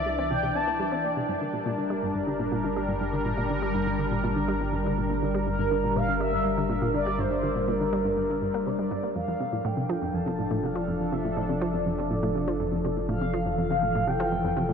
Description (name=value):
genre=ambient, sequencer-driven space music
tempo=122 BPM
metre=4/4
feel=straight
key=G dorian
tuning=A4 = 440 Hz
part: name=mellow horn-like synth lead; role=melody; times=0.0-1.0, 5.5-14.7 s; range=Bb4 to A5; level=-30 LUFS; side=equal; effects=phaser, lush chorus, tape echo
part: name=sweeping resonant pad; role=sustained chords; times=0.0-14.7 s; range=E3 to D5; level=-28 LUFS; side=left 1 dB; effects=chorus
part: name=round analog bass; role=bass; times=0.0-14.7 s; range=F1 to C2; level=-35 LUFS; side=right 1 dB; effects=none
part: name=analog pluck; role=riff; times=0.1-14.7 s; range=F2 to C4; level=-31 LUFS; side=equal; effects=chorus, tape echo
room=wet huge ambient reverb, RT60 7.7 s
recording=dreamy mix soaked in reverb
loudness=-25 LUFS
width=side -6 dB against mid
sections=0.0-14.7 A section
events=filter sweep on synth arpeggio sound 0.0-14.7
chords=0.0 Cadd9; 1.3 Gm; 9.2 F6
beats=0.30 0.80 | 1.29 1.78 2.27 2.76 | 3.26 3.75 4.24 4.73 | 5.22 5.71 6.21 6.70 | 7.19 7.68 8.17 8.67 | 9.16 9.65 10.14 10.63 | 11.12 11.62 12.11 12.60 | 13.09 13.58 14.08 14.57